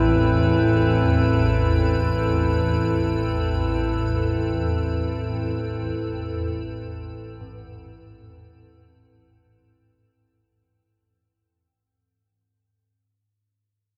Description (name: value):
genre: dark ambient drone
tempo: free time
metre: none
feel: none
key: A harmonic minor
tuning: A4 = 442 Hz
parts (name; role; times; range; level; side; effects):
- dark analog pad; sustained chords; 0.0-10.5 s; A2 to B4; -25 LUFS; equal; chorus
- bronze singing bowl; arpeggios; 0.0-13.0 s; G#2 to E4; -40 LUFS; equal; none
- swarming drone; drone; 0.0-10.5 s; A1 to E2; -27 LUFS; equal; built-in reverb
- icy glass pad; texture; 0.0-10.5 s; C4 to A4; -33 LUFS; equal; chorus, built-in reverb
room: wet cathedral reverb, RT60 7.2 s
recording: in a vast, echoing space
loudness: -22 LUFS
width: mono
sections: 0.0-10.5 A section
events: fade-out 0.6-10.5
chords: 0.0 Amadd9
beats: free time